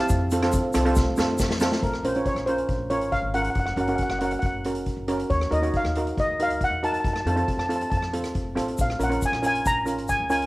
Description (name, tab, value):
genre	calypso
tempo	138 BPM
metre	4/4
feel	straight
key	Bb minor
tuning	A4 = 439 Hz
part	steel pan	melody	0.0-10.5 s	Bb4 to Bb5	-26 LUFS	equal	none
part	steel pan	accompaniment	0.0-10.5 s	C4 to Db5	-26 LUFS	right 1 dB	cassette tape
part	upright bass	bass	0.1-10.5 s	F1 to F2	-30 LUFS	equal	none
part	street-band drum kit	drums	0.1-10.5 s	hi-hat, kick drum, rim click, snare drum	-29 LUFS	equal	cassette tape
part	egg shaker	percussion	0.1-1.7, 8.8-10.4 s	none	-39 LUFS	left 5 dB	none
room	light reverb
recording	home recording on cassette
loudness	-22 LUFS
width	side -20 dB against mid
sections	0.0-1.8 A section; 1.8-10.5 B section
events	drum fill 1.0-1.8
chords	0.1 F; 1.8 Bbm7; 3.6 Gb; 5.3 Ebm7; 7.0 F; 8.8 Bbm7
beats	| 0.09 0.52 0.95 1.39 | 1.82 2.25 2.69 3.12 | 3.56 3.99 4.43 4.87 | 5.30 5.74 6.17 6.61 | 7.04 7.48 7.91 8.35 | 8.79 9.22 9.66 10.09